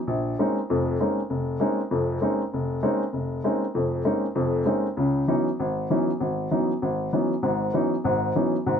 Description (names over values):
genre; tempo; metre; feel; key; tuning
jazz; 196 BPM; 4/4; swing 61% on 8ths; unclear; A4 = 440 Hz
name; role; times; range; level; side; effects
warm baby grand piano; solo; 0.1-8.8 s; F1 to Eb4; -22 LUFS; left 1 dB; none
room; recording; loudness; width
moderate studio reverb, RT60 0.5 s; none; -22 LUFS; side -7 dB against mid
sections
0.0-8.8 A section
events
none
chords
0.1 Bbm11; 5.0 Dbm11